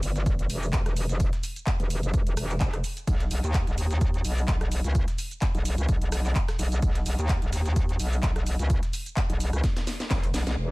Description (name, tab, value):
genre	bass house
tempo	128 BPM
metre	4/4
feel	swing 55% on 16ths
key	unclear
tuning	A4 = 440 Hz
part	metallic wobble bass	bass	0.0-10.7 s	E1 to D#2	-27 LUFS	equal	chorus, tube saturation, sidechain pumping
part	dusty soul sampler-style drum kit	drums	0.0-10.6 s	hi-hat, snare drum, tambourine	-45 LUFS	right 1 dB	none
part	garage drum kit	drums	0.0-10.7 s	handclaps, hi-hat, rim click, shaker, snare drum	-34 LUFS	equal	low-pass filter on snare, studio reverb, low-pass filter on hats, low-pass filter on perc
part	electronic kick drum	drums	0.3-10.2 s	none	-26 LUFS	equal	studio reverb
room	little or no reverb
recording	none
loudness	-24 LUFS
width	side -23 dB against mid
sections	0.0-10.6 A section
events	drop 0.0-10.6; drum fill 9.6-10.6; band accent 10.5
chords	none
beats	0.26 0.73 | 1.20 1.67 2.14 2.61 | 3.07 3.54 4.01 4.48 | 4.95 5.42 5.89 6.36 | 6.82 7.29 7.76 8.23 | 8.70 9.17 9.64 10.11 | 10.57